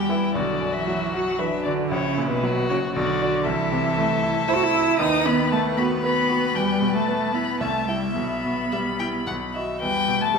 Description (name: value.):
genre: quick classical-period movement for piano quartet.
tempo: 115 BPM.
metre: 3/4.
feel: straight.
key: E minor.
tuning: A4 = 441 Hz.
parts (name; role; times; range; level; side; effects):
warm violin; melody; 0.0-10.4 s; B4 to E6; -26 LUFS; left 6 dB; none.
rich cello; second line; 0.0-10.4 s; B2 to F#4; -24 LUFS; right 4 dB; none.
warm violin; second line; 0.0-10.4 s; D4 to G5; -29 LUFS; left 4 dB; none.
bright grand piano; accompaniment; 0.0-10.4 s; A#1 to E5; -26 LUFS; equal; none.
room: wet scoring stage reverb, RT60 2.0 s.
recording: minimal, uncompressed stereo recording.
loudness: -20 LUFS.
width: side -5 dB against mid.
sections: 0.0-9.8 A section.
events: none.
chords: 0.3 Bm; 1.9 F#7/A#; 2.9 Bm; 3.5 Am/C; 5.0 B7/D#; 6.6 E5; 7.6 Am/C; 8.2 Em/B; 9.3 B; 9.8 Em.